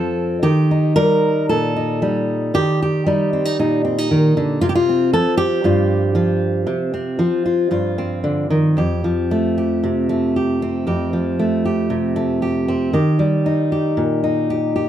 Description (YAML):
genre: folk, solo fingerstyle acoustic guitar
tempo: 115 BPM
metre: 4/4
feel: rubato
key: F mixolydian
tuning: A4 = 438 Hz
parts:
  - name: fingerpicked steel-string acoustic guitar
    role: solo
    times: 0.0-14.9 s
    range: F2 to Bb4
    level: -16 LUFS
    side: equal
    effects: none
room: moderate studio ambience, RT60 0.5 s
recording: none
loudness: -16 LUFS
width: side -10 dB against mid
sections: 0.0-8.8 A section; 8.8-14.9 B section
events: none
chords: 0.4 Eb; 4.6 Csus4; 8.8 Fadd9; 12.9 Eb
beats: | 0.43 0.96 1.49 2.02 | 2.54 3.06 3.59 4.10 | 4.62 5.13 5.64 6.16 | 6.67 7.19 7.71 8.25 | 8.78 9.31 9.83 10.35 | 10.87 11.39 11.90 12.42 | 12.93 13.45 13.97 14.49